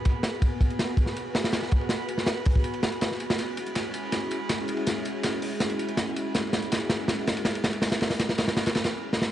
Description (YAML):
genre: drum and bass, jungle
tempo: 162 BPM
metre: 4/4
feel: straight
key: unclear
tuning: A4 = 437 Hz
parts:
  - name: soft string machine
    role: sustained chords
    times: 0.0-8.9 s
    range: G#3 to B4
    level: -32 LUFS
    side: equal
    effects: ensemble chorus, vintage 12-bit sampler grit
  - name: drifting glass-harmonics texture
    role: texture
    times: 0.0-8.9 s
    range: B5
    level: -42 LUFS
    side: right 7 dB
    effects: chorus, built-in reverb
  - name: crunchy breakbeat drum kit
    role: drums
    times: 0.1-9.3 s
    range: kick drum, ride cymbal, snare drum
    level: -26 LUFS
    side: equal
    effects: none
  - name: dusty soul sampler-style drum kit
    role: drums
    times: 0.1-8.9 s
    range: hi-hat, snare drum, tambourine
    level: -41 LUFS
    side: equal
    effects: none
room: light reverb, small room ambience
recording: dark, warm production, vinyl crackle, nothing above 10.7 kHz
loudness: -24 LUFS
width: side -12 dB against mid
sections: 0.0-9.3 A section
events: build-up 0.0-9.3; drum fill 3.4-8.9, 9.1; stop 8.9-9.3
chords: 0.0 G#m9; 3.4 E69/G#